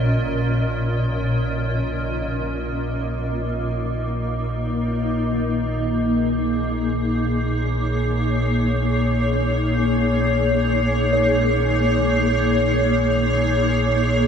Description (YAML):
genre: dark ambient drone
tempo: free time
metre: none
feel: none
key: Bb minor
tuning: A4 = 443 Hz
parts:
  - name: granular cloud pad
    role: sustained chords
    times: 0.0-14.3 s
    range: Bb2 to Eb5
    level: -20 LUFS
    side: left 1 dB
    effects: built-in reverb
  - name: deep rumbling drone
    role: drone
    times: 0.0-14.3 s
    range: Bb1 to Bb2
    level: -23 LUFS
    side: right 1 dB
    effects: built-in reverb
  - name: bronze singing bowl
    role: texture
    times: 0.0-2.1, 11.1-14.3 s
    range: Db5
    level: -28 LUFS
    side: right 2 dB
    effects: stereo widening
room: wet huge ambient reverb, RT60 8.8 s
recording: none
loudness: -19 LUFS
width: side -7 dB against mid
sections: 0.0-2.1 A section; 2.1-14.3 B section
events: none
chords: 0.0 Dbadd9/Bb; 2.1 Bbm